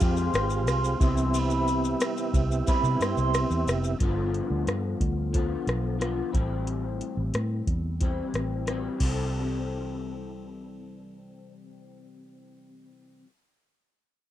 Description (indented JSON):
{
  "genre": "indie pop, bedroom pop",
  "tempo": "90 BPM",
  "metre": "4/4",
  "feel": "straight",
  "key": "C major",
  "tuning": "A4 = 438 Hz",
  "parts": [
    { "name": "hollow clarinet-like synth lead", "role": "melody", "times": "0.0-3.7 s", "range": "B5 to C6", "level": "-30 LUFS", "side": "right 2 dB", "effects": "wide subtle chorus, slapback echo" },
    { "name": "electric guitar through a small old amp", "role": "accompaniment", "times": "0.0-13.3 s", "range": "G2 to B4", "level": "-32 LUFS", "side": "left 3 dB", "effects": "ensemble chorus, warbly pitch drift" },
    { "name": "mellow tonewheel organ", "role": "accompaniment", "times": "0.0-4.0 s", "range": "B3 to F5", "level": "-30 LUFS", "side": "right 6 dB", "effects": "chorus vibrato" },
    { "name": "vintage muted fingered electric bass", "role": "bass", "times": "0.0-13.2 s", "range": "F1 to C3", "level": "-29 LUFS", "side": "equal", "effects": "none" },
    { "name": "soft vintage rhythm box", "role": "drums", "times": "0.0-9.2 s", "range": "crash cymbal, hi-hat, kick drum, ride cymbal, rim click, shaker", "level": "-29 LUFS", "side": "equal", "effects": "overdrive" }
  ],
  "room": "little or no reverb",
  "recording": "dry, close 1970s-style studio recording",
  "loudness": "-24 LUFS",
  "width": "side -12 dB against mid",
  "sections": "0.0-4.0 A section; 4.0-9.3 B section; 9.3-12.0 C section",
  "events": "none",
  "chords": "0.0 Fmadd9; 1.0 Cmaj7; 4.0 G7; 6.3 Am7; 9.0 C6",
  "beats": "0.01 0.68 | 1.34 2.01 2.67 3.34 | 4.01 4.67 5.34 6.00 | 6.67 7.34 8.01 8.67 | 9.34 10.01 10.67 11.34"
}